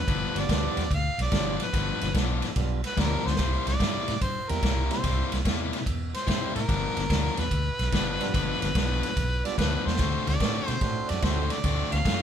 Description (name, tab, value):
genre	electric blues shuffle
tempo	145 BPM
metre	4/4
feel	swing 67% on 8ths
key	G mixolydian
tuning	A4 = 440 Hz
part	clear harmonica	melody	0.0-12.2 s	Bb4 to F5	-31 LUFS	right 1 dB	overdrive
part	cranked stack guitar	riff	0.1-12.2 s	G2 to F#4	-31 LUFS	left 4 dB	overdrive
part	vintage muted fingered electric bass	bass	0.1-12.2 s	G1 to B2	-29 LUFS	equal	none
part	vintage drum kit	drums	0.1-12.2 s	kick drum, ride cymbal, snare drum	-29 LUFS	right 1 dB	none
part	tonewheel organ	accompaniment	0.4-11.5 s	G3 to F#4	-35 LUFS	right 8 dB	overdrive
room	light reverb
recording	band playing live in one room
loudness	-24 LUFS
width	side -9 dB against mid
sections	0.0-12.2 A section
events	drum fill 3.2, 9.8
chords	0.0 G7; 3.4 C7; 6.7 G7; 10.0 D7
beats	| 0.08 0.49 0.91 1.32 | 1.73 2.15 2.56 2.98 | 3.39 3.80 4.21 4.63 | 5.04 5.46 5.87 6.28 | 6.69 7.11 7.52 7.93 | 8.34 8.76 9.17 9.58 | 9.99 10.41 10.82 11.23 | 11.64 12.06